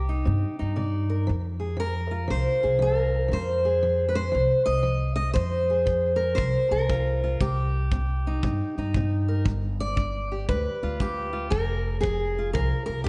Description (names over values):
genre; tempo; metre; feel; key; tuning
acoustic country blues, solo or duo; 118 BPM; 4/4; swing 65% on 8ths; unclear; A4 = 437 Hz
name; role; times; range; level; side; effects
fingerpicked steel-string acoustic guitar; melody; 0.0-13.1 s; G2 to Eb5; -28 LUFS; equal; none
upright bass; bass; 0.0-13.1 s; F1 to G2; -29 LUFS; equal; none
kick drum; drums; 5.4-13.1 s; none; -30 LUFS; equal; none
room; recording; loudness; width
wet lush hall reverb, RT60 1.9 s, small room ambience; dreamy mix soaked in reverb, nothing above 10.6 kHz; -25 LUFS; mono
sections
0.0-13.1 A section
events
none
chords
0.0 Cmadd9; 1.3 Fm; 7.4 Cm; 9.5 G7; 11.5 Fm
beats
0.28 0.79 | 1.29 1.80 2.31 2.82 | 3.33 3.84 4.35 4.86 | 5.37 5.88 6.39 6.90 | 7.41 7.92 8.43 8.95 | 9.46 9.97 10.49 11.00 | 11.52 12.03 12.55 13.06